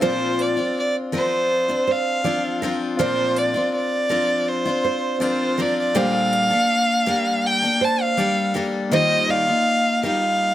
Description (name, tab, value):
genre	acoustic pop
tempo	81 BPM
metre	4/4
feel	straight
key	Bb major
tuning	A4 = 440 Hz
part	warm violin	melody	0.0-10.5 s	C5 to A5	-20 LUFS	right 1 dB	plate reverb
part	clear concert grand piano	accompaniment	0.0-10.5 s	A3 to Eb5	-33 LUFS	left 1 dB	none
part	picked steel-string acoustic guitar	accompaniment	0.0-10.5 s	Bb2 to A4	-23 LUFS	left 3 dB	plate reverb
part	nylon-string guitar	arpeggios	0.0-10.2 s	Bb4 to D5	-27 LUFS	right 7 dB	plate reverb, tape echo
room	moderate studio reverb, RT60 0.5 s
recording	none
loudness	-18 LUFS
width	side -13 dB against mid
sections	0.0-10.5 A section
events	none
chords	0.0 Bbadd9; 6.0 Gmadd9/Bb; 8.9 Ebadd9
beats	| 0.02 0.76 1.50 2.24 | 2.99 3.73 4.47 5.21 | 5.95 6.70 7.44 8.18 | 8.92 9.66 10.40